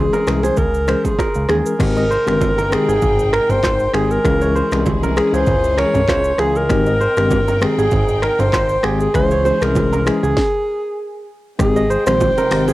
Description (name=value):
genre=afrobeats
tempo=98 BPM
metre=4/4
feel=swing 55% on 16ths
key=Ab major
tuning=A4 = 440 Hz
part: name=breathy alto saxophone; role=melody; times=0.0-12.7 s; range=G4 to Db5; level=-18 LUFS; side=equal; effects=cassette tape
part: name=tine electric piano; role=accompaniment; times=0.0-12.7 s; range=Eb3 to Ab4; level=-20 LUFS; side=left 3 dB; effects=medium tremolo
part: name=kora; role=riff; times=0.0-12.7 s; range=Ab4 to Eb5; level=-24 LUFS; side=right 3 dB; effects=none
part: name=fat analog bass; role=bass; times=0.0-12.7 s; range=G1 to Eb2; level=-21 LUFS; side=equal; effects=none
part: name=afro-pop drum kit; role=drums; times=0.1-12.7 s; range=crash cymbal, finger snaps, handclaps, hi-hat, kick drum, rim click, shaker, snare drum, toms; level=-22 LUFS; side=equal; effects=cassette tape
part: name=bongos and congas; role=percussion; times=0.1-12.7 s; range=none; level=-25 LUFS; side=right 5 dB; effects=none
part: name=warm studio string section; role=sustained chords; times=1.8-12.7 s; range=C3 to G5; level=-29 LUFS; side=equal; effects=none
room=little or no reverb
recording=home recording on cassette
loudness=-14 LUFS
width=side -17 dB against mid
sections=0.0-1.8 A section; 1.8-11.6 B section; 11.6-12.7 C section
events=stop 10.4-11.6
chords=0.0 Dbm; 1.8 Abmaj7; 4.2 Dbm; 6.7 Abmaj7; 9.1 Dbm; 11.6 Abmaj7